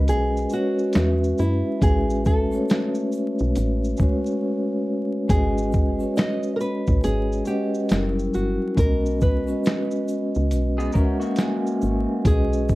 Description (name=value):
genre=lo-fi hip hop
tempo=69 BPM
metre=4/4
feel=swing 63% on 16ths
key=unclear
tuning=A4 = 440 Hz
part: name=nylon-string guitar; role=melody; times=0.0-12.8 s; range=E4 to D#5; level=-27 LUFS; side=equal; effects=low-pass filter
part: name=vibraphone with soft mallets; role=accompaniment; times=0.0-12.8 s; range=F#3 to G#5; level=-24 LUFS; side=equal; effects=low-pass filter
part: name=woody FM bass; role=bass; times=0.0-12.8 s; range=F#1 to F#2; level=-24 LUFS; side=equal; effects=none
part: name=dusty soul sampler-style drum kit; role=drums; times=0.1-12.8 s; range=hi-hat, kick drum, shaker, snare drum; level=-22 LUFS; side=equal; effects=none
part: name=egg shaker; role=percussion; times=0.1-12.8 s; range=none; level=-52 LUFS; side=left 4 dB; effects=none
part: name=electric guitar through a small old amp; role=second line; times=10.8-12.2 s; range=A#3 to A#4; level=-29 LUFS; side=equal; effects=low-pass filter, analog delay
room=moderate small room reverb, RT60 0.6 s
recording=dark, warm production, vinyl crackle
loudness=-20 LUFS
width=side -18 dB against mid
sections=0.0-12.8 A section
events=break 4.4-5.3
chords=0.0 G#m7/B; 0.9 E; 1.8 Amaj7; 5.3 G#m7; 7.9 F#7b9; 8.8 Bmaj7